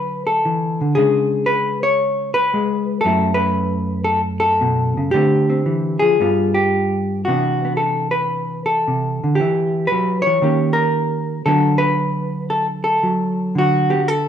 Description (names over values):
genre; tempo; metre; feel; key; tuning
solo jazz; 114 BPM; 4/4; swing 67% on 8ths, rubato; D major; A4 = 439 Hz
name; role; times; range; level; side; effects
hollow-body jazz guitar; solo; 0.0-14.3 s; F#2 to C#5; -16 LUFS; equal; none
room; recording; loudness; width
moderate large studio reverb, RT60 1.1 s; none; -16 LUFS; side -9 dB against mid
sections
0.0-14.3 A section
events
none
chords
0.0 D6; 1.0 C#5; 3.0 F#m7; 5.1 Dm9; 6.2 G7; 7.3 Cmaj9; 9.4 Em; 10.4 Eb7; 11.5 D6